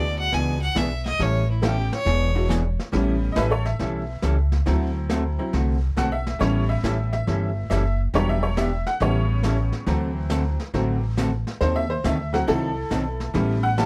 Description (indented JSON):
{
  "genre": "country, western swing",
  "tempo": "138 BPM",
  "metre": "4/4",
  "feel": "swing 68% on 8ths",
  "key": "A mixolydian",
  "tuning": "A4 = 443 Hz",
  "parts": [
    { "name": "clear fiddle", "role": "melody", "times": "0.0-2.5 s", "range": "E4 to G#5", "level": "-29 LUFS", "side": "equal", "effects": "plate reverb" },
    { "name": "tack piano", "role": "accompaniment", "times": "0.0-13.9 s", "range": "C#3 to A5", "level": "-29 LUFS", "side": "equal", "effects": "none" },
    { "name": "upright bass", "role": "bass", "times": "0.0-13.9 s", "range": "E1 to D#2", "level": "-26 LUFS", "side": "equal", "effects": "none" },
    { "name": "archtop guitar, miked and amplified", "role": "accompaniment", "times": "0.3-13.9 s", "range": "D3 to A4", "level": "-30 LUFS", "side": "equal", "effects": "none" },
    { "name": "vintage brush drum kit", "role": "drums", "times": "0.3-13.9 s", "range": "brushed snare drum, hi-hat, snare drum", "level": "-34 LUFS", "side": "equal", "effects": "none" }
  ],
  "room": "light reverb",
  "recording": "none",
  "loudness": "-23 LUFS",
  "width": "mono",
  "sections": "0.0-2.9 A section; 2.9-13.9 A section",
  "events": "fiddle solo 0.0-2.9; honky-tonk piano solo 2.9-13.9",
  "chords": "0.0 E9; 1.2 A9; 2.1 E9; 2.9 A9; 4.7 D9; 6.4 A9; 8.1 Em7; 9.0 A9; 9.9 D9; 11.6 D#dim7; 13.3 A9"
}